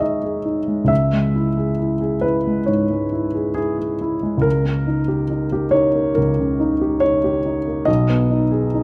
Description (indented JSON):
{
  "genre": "classical, romantic nocturne for solo piano",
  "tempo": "69 BPM",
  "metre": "4/4",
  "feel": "rubato",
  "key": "unclear",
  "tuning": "A4 = 440 Hz",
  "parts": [
    { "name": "clear grand piano", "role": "solo", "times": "0.0-8.8 s", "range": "B1 to E5", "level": "-19 LUFS", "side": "equal", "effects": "none" }
  ],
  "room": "light reverb",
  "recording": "close, detailed microphones",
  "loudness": "-19 LUFS",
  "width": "mono",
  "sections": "0.0-8.8 A section",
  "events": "none",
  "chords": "0.0 G#m; 0.9 C#m; 4.5 D#7/C#; 7.9 G#m/B"
}